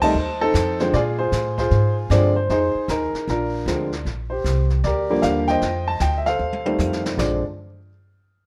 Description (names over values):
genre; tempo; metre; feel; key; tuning
jazz piano trio; 154 BPM; 4/4; swing 64% on 8ths; Bb mixolydian; A4 = 440 Hz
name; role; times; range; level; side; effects
clear upright piano; melody; 0.0-7.4 s; D3 to A5; -23 LUFS; equal; none
upright bass; bass; 0.0-7.4 s; Bb1 to Bb2; -25 LUFS; equal; none
jazz brush drum kit; drums; 0.0-7.3 s; brushed snare drum, hi-hat, kick drum, ride cymbal, snare drum, splash cymbal, toms; -35 LUFS; equal; none
room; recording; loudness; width
moderate plate reverb, RT60 1.0 s, studio ambience; rough home demo mix; -21 LUFS; mono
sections
0.0-4.1 A section; 4.1-7.2 B section; 7.2-8.5 C section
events
band accent 0.0; drum fill 6.4-7.2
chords
0.0 F7; 0.9 Bb7; 2.5 Fm7; 3.3 Bb7; 4.1 Ebmaj7; 5.6 F9; 7.2 Bb